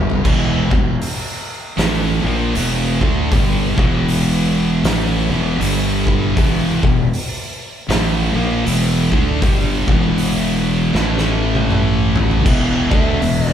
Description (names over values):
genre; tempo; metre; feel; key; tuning
stoner and doom metal; 79 BPM; 4/4; swing 60% on 8ths; E minor; A4 = 440 Hz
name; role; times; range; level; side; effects
thick fuzz guitar; riff; 0.0-13.5 s; E2 to D4; -23 LUFS; left 7 dB; distortion
thick fuzz guitar; riff; 0.0-13.5 s; E2 to D4; -21 LUFS; right 6 dB; distortion
fuzz fingered electric bass; bass; 0.0-13.5 s; E1 to D2; -20 LUFS; equal; overdrive
oversized low-tuned drum kit; drums; 0.1-13.5 s; crash cymbal, hi-hat, kick drum, snare drum, toms; -19 LUFS; equal; none
high-gain distorted guitar; riff; 0.2-13.5 s; E2 to D4; -23 LUFS; left 1 dB; distortion
fuzz lead guitar; melody; 12.9-13.5 s; E5; -23 LUFS; left 1 dB; distortion
room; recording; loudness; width
light reverb; band playing live in one room; -14 LUFS; side -9 dB against mid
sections
0.2-12.5 A section; 12.5-13.5 B section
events
drum fill 0.0, 10.9-12.5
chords
0.2 Em; 5.6 G5; 6.4 Em; 10.9 A5; 12.5 E5